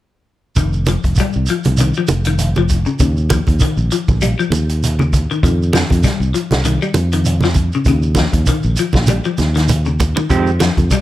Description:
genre	afrobeat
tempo	99 BPM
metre	4/4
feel	swing 55% on 16ths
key	unclear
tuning	A4 = 438 Hz
part	semi-hollow electric guitar	arpeggios	0.6-11.0 s	Db3 to G3	-20 LUFS	left 5 dB	wide subtle chorus
part	fingered electric bass	bass	0.6-10.9 s	F1 to F2	-16 LUFS	equal	none
part	vintage drum kit	drums	0.6-11.0 s	hi-hat, kick drum, snare drum	-19 LUFS	equal	none
part	shekere	percussion	0.6-11.0 s	none	-23 LUFS	right 3 dB	none
part	congas	percussion	0.9-10.9 s	none	-19 LUFS	right 3 dB	none
part	mellow electric guitar	stabs	10.3-11.0 s	Eb3 to G4	-19 LUFS	right 6 dB	none
room	light reverb, small room ambience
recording	none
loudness	-13 LUFS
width	side -14 dB against mid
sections	0.6-11.0 A section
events	drum fill 9.1-10.3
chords	0.6 F5; 3.0 Eb7(no3); 5.4 Fsus2; 7.9 Eb7(no3); 10.3 Fm9

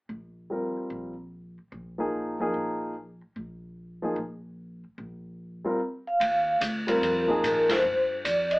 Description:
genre	modal jazz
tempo	147 BPM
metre	4/4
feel	swing 64% on 8ths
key	Eb major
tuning	A4 = 437 Hz
part	upright bass	bass	0.1-8.6 s	Bb1 to Bb2	-40 LUFS	equal	none
part	warm grand piano	accompaniment	0.5-7.8 s	F3 to Bb4	-28 LUFS	equal	none
part	vibraphone with soft mallets	melody	6.1-8.6 s	Bb4 to F5	-24 LUFS	equal	none
part	open jazz drum kit	drums	6.2-8.6 s	hi-hat, ride cymbal, snare drum	-31 LUFS	equal	none
room	wet small room reverb, RT60 0.5 s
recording	band playing live in one room, AM radio sound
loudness	-25 LUFS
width	side -23 dB against mid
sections	0.0-6.2 A section; 6.2-8.6 B section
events	band accent 7.6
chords	0.0 Ebadd9; 6.2 Ebmaj9

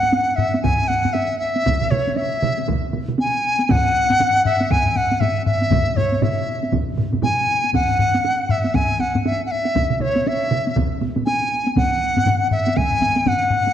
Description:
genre	japanese traditional, taiko drum ensemble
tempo	119 BPM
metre	4/4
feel	swing 60% on 16ths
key	unclear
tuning	A4 = 440 Hz
part	bright dizi	melody	0.0-13.7 s	C#5 to G#5	-19 LUFS	left 1 dB	none
part	taiko ensemble	percussion	0.0-13.7 s	none	-25 LUFS	right 1 dB	none
part	taiko ensemble	percussion	0.4-13.6 s	none	-23 LUFS	left 2 dB	none
part	solo taiko drums	percussion	0.6-12.9 s	none	-25 LUFS	right 1 dB	none
part	taiko ensemble	percussion	1.7-11.3 s	none	-25 LUFS	right 4 dB	none
room	wet scoring stage reverb, RT60 1.7 s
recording	worn, warbling old tape, cassette tape, warbly pitch drift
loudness	-17 LUFS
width	side -10 dB against mid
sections	0.0-13.7 A section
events	none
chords	none

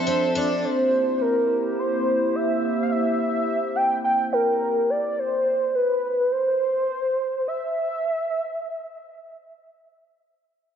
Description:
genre	dream pop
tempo	105 BPM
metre	4/4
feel	uneven beats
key	C major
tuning	A4 = 440 Hz
part	warm velvety synth lead	melody	0.0-9.3 s	Bb4 to G5	-22 LUFS	equal	chorus, digital delay
part	warbly tape-like pad	sustained chords	0.0-5.1 s	Bb3 to E5	-26 LUFS	right 1 dB	chorus, built-in reverb
part	picked twelve-string acoustic guitar	arpeggios	0.0-1.2 s	F3 to A4	-28 LUFS	left 2 dB	lush chorus, digital delay
room	moderate plate reverb, RT60 3.0 s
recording	nothing above 7.8 kHz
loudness	-21 LUFS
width	side -8 dB against mid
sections	0.0-10.0 A section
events	slowing down 5.1-10.0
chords	0.0 Dm7; 0.6 C7; 5.1 N.C.

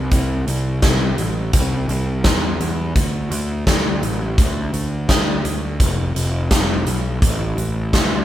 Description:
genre	classic rock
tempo	84 BPM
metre	4/4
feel	straight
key	unclear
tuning	A4 = 440 Hz
part	fuzz picked electric bass	bass	0.0-8.2 s	F1 to E2	-21 LUFS	equal	overdrive
part	huge arena drum kit	drums	0.1-8.1 s	hi-hat, kick drum, snare drum	-18 LUFS	equal	none
room	light reverb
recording	band playing live in one room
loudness	-17 LUFS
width	side -12 dB against mid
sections	0.0-8.2 A section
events	none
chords	none

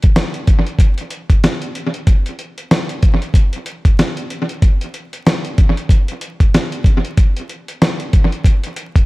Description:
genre	hip hop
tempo	94 BPM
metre	4/4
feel	swing 59% on 16ths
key	none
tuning	none
part	dusty soul sampler-style drum kit	drums	0.0-9.1 s	hi-hat, kick drum, snare drum	-13 LUFS	equal	analog delay
room	light reverb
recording	echo-heavy mix, vinyl crackle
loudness	-13 LUFS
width	side -21 dB against mid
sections	0.0-9.1 A section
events	none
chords	none

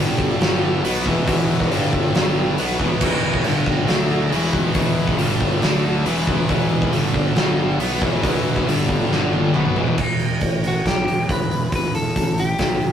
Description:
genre	hard rock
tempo	138 BPM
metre	4/4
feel	straight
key	E minor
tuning	A4 = 440 Hz
part	overdriven tonewheel organ	sustained chords	0.0-10.0 s	E3 to F#5	-31 LUFS	equal	none
part	heavy high-gain guitar	riff	0.0-10.0 s	E2 to D4	-24 LUFS	left 5 dB	distortion
part	scooped high-gain guitar	riff	0.0-10.0 s	E2 to D4	-26 LUFS	right 5 dB	distortion
part	fuzz fingered electric bass	bass	0.0-12.9 s	E1 to D2	-23 LUFS	equal	overdrive
part	big rock drum kit	drums	0.2-12.9 s	crash cymbal, hi-hat, kick drum, snare drum, toms	-20 LUFS	equal	none
part	lightly driven lead guitar	melody	10.7-12.9 s	F#4 to B4	-24 LUFS	left 1 dB	analog delay
room	light reverb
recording	rough rehearsal-room recording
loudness	-17 LUFS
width	side -9 dB against mid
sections	0.0-10.0 A section; 10.0-12.9 B section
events	drum fill 9.1-10.0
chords	0.0 G5; 0.8 E5; 1.7 G5; 2.6 E5; 3.5 G5; 3.9 D5; 4.3 E5; 5.2 G5; 5.6 D5; 6.1 E5; 6.9 G5; 7.8 E5; 8.7 G5; 9.5 E5; 10.0 N.C.; 10.4 F#m/A; 10.9 Em; 12.2 Gsus2/A

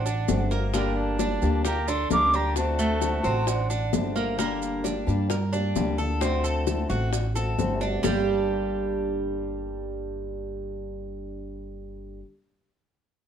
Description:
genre	latin, Cuban son and guajira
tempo	131 BPM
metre	4/4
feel	straight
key	G harmonic minor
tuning	A4 = 440 Hz
part	mellow hollow jazz flute	melody	0.0-3.9 s	F#5 to D6	-28 LUFS	equal	none
part	clear trumpet	second line	0.0-3.9 s	D4 to Bb4	-36 LUFS	right 5 dB	tape echo
part	Cuban tres	arpeggios	0.0-12.2 s	G3 to Bb4	-30 LUFS	right 4 dB	none
part	upright bass	bass	0.0-12.2 s	G1 to G2	-29 LUFS	equal	none
part	bongos	percussion	0.1-8.1 s	none	-31 LUFS	left 6 dB	none
part	maracas	percussion	0.1-8.1 s	none	-39 LUFS	right 8 dB	none
part	fingerpicked acoustic archtop guitar	accompaniment	0.3-12.3 s	G2 to G4	-32 LUFS	left 4 dB	none
room	moderate studio reverb, RT60 0.8 s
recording	dark, warm production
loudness	-23 LUFS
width	side -8 dB against mid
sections	0.0-4.4 A section; 4.4-8.0 B section; 8.0-11.7 C section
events	none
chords	0.0 D7; 0.7 Gm; 2.6 D7; 4.4 Gm; 6.2 D7; 8.0 Gm

